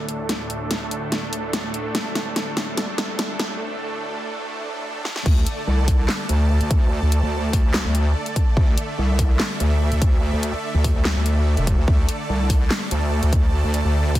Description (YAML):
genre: heavy wobble dubstep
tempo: 145 BPM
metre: 4/4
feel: half-time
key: unclear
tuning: A4 = 442 Hz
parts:
  - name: supersaw pad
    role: sustained chords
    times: 0.0-14.2 s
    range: D2 to A5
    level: -27 LUFS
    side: right 2 dB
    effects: sidechain pumping, low-pass filter
  - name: dubstep drum kit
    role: drums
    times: 0.1-14.2 s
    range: crash cymbal, handclaps, hi-hat, snare drum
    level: -25 LUFS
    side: left 1 dB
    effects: none
  - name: wobble bass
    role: bass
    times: 5.3-14.2 s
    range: E1 to D2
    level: -19 LUFS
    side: equal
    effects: chorus, overdrive
  - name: electronic kick drum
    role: drums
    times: 5.3-14.2 s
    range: none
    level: -18 LUFS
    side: equal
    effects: none
room: light reverb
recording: dense, heavily limited modern master, high-pass filter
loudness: -19 LUFS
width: side -14 dB against mid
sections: 0.0-5.3 A section; 5.3-14.2 B section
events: build-up 0.0-5.3; drum fill 0.0-3.6, 5.1; filter sweep on supersaw synth 0.0-5.3; break 3.6-5.3; drop 5.3-14.2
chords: 0.0 D5